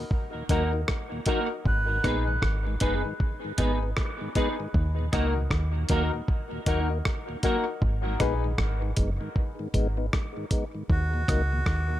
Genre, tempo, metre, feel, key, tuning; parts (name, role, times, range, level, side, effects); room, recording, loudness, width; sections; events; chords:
dub reggae; 78 BPM; 4/4; swing 60% on 16ths; G# minor; A4 = 440 Hz
mellow tonewheel organ; accompaniment; 0.0-12.0 s; D#2 to D#4; -35 LUFS; left 2 dB; slow rotary speaker, dub echo
dusty soul sampler-style drum kit; drums; 0.1-11.9 s; hi-hat, kick drum, rim click; -28 LUFS; equal
clean electric guitar; accompaniment; 0.5-7.6 s; A#3 to B4; -34 LUFS; right 3 dB; analog chorus, dub echo
warm baby grand piano; stabs; 0.5-8.4 s; D#4 to B4; -34 LUFS; left 6 dB; dub echo
deep dub fingered electric bass; bass; 0.5-12.0 s; F#1 to D#2; -27 LUFS; equal
melodica; melody; 1.7-2.1, 10.9-12.0 s; F#4 to B4; -33 LUFS; right 2 dB; dub echo
light reverb; -24 LUFS; side -13 dB against mid
0.0-12.0 A section
break 0.0-1.7
0.0 D#m; 1.7 G#m; 4.7 D#m; 7.8 G#m; 10.9 D#m